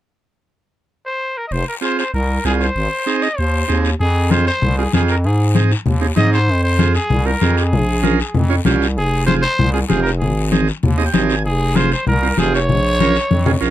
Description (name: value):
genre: latin, cumbia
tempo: 193 BPM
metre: 4/4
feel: straight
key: F minor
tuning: A4 = 441 Hz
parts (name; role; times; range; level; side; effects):
- growling trumpet; melody; 1.1-13.7 s; Ab4 to Eb5; -20 LUFS; equal; none
- growling FM bass; bass; 1.5-13.7 s; F1 to Ab2; -17 LUFS; equal; none
- guiro; percussion; 1.5-13.7 s; none; -29 LUFS; left 7 dB; none
- overdriven combo organ; accompaniment; 1.8-13.7 s; C4 to Ab5; -19 LUFS; right 6 dB; none
- congas; percussion; 4.0-13.5 s; none; -19 LUFS; left 4 dB; none
room: little or no reverb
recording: none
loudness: -14 LUFS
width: side -13 dB against mid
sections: 0.3-1.5 A section; 1.5-4.0 B section; 4.0-13.7 C section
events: transistor combo organ fill 10.8-11.5; drum fill 13.3-13.7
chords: 0.3 N.C.; 1.5 Fm; 2.8 Ab; 4.0 Fm; 5.2 Ab; 6.5 Fm; 7.7 Bbm7; 9.0 Fm; 10.2 Ab; 11.5 Fm; 12.7 Bbm